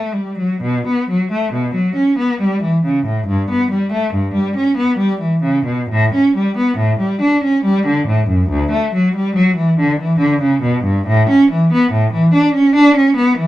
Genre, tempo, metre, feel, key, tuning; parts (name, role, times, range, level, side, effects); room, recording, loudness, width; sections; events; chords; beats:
classical, baroque-style suite movement for unaccompanied cello; 70 BPM; 3/4; rubato; A4 = 440 Hz
rich cello; solo; 0.0-13.5 s; D2 to D4; -13 LUFS; equal
light reverb; dark, warm production; -13 LUFS; side -14 dB against mid
0.6-13.5 A section
| 0.62 1.52 2.41 | 3.28 4.12 4.98 | 5.88 6.77 7.64 | 8.49 9.35 10.20 | 11.06 11.92 12.76